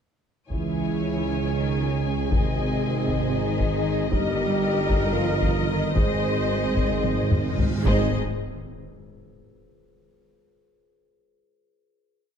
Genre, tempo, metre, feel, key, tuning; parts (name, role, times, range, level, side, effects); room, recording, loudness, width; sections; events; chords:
cinematic, epic orchestral film score; 219-234 BPM (eighths); 7/8; straight; Ab major; A4 = 438 Hz
rich chamber violin section; melody; 0.5-8.2 s; Eb5 to Ab5; -33 LUFS; left 6 dB
warm symphonic violin section; second line; 0.5-8.2 s; C5 to Eb5; -34 LUFS; left 4 dB
rich symphonic viola section; accompaniment; 0.5-8.2 s; Ab4 to C5; -33 LUFS; right 4 dB
clear French horn section; sustained chords; 0.5-8.1 s; C4 to Ab4; -31 LUFS; left 3 dB
rich symphonic string section; sustained chords; 0.5-8.2 s; G3 to Eb5; -34 LUFS; left 1 dB
mellow tuba; bass; 0.5-8.1 s; G1 to Db2; -30 LUFS; right 4 dB
rich symphonic cello section; bass; 0.5-8.2 s; C3 to Ab3; -30 LUFS; right 2 dB
rich symphonic double bass section; bass; 0.5-8.2 s; G1 to Db2; -30 LUFS; right 3 dB
taiko ensemble; drums; 0.5-8.9 s; -26 LUFS; left 1 dB
timpani; percussion; 6.0-8.1 s; Ab2; -30 LUFS; left 1 dB
reverse cymbal and impact; sound effects; 7.5-9.8 s; -39 LUFS; left 1 dB
moderate scoring stage reverb, RT60 1.6 s; dark, warm production; -21 LUFS; side -7 dB against mid
0.5-7.9 theme; 7.9-9.8 final chord
timpani fill 6.0-7.9; drum fill 7.1-7.9; reverse cymbal 7.5-7.9; impact 7.9-9.8
0.5 Dbm; 2.3 Ab; 4.1 Eb/G; 6.0 Ab